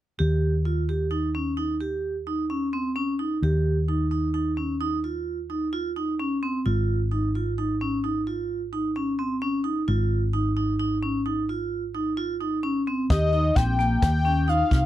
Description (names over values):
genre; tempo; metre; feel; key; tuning
progressive instrumental, band music in an uneven meter; 130 BPM; 7/4; straight; Eb mixolydian; A4 = 440 Hz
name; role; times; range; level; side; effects
vibraphone with hard mallets; arpeggios; 0.2-14.9 s; Bb3 to G4; -26 LUFS; right 2 dB; none
hollow-body short-scale fingered electric bass; bass; 0.2-14.9 s; Ab1 to Eb2; -26 LUFS; equal; none
fat analog lead; melody; 13.1-14.9 s; Eb5 to G5; -24 LUFS; left 3 dB; none
jazz brush drum kit; drums; 13.1-14.8 s; hi-hat, kick drum, snare drum; -22 LUFS; left 1 dB; none
room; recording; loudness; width
light reverb; dry, close 1970s-style studio recording; -23 LUFS; side -13 dB against mid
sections
0.2-13.1 A section; 13.1-14.9 B section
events
none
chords
0.2 Eb; 6.7 Ab5; 13.1 Eb